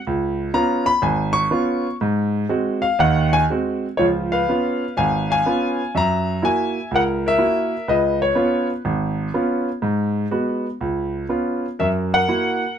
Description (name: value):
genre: solo jazz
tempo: 123 BPM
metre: 4/4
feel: swing 67% on 8ths, rubato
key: Db mixolydian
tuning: A4 = 440 Hz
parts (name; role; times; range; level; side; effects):
- clear grand piano; solo; 0.1-12.8 s; Ab1 to Db6; -18 LUFS; equal; none
room: light reverb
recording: close, detailed microphones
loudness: -18 LUFS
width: side -8 dB against mid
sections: 0.0-4.0 A section; 4.0-12.8 B section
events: grand piano solo 0.0-4.0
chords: 0.1 Db7; 2.0 Ab7; 4.0 Db7; 5.9 Gb7; 7.9 Db7; 9.8 Abm7; 10.8 Db7; 11.8 Gb7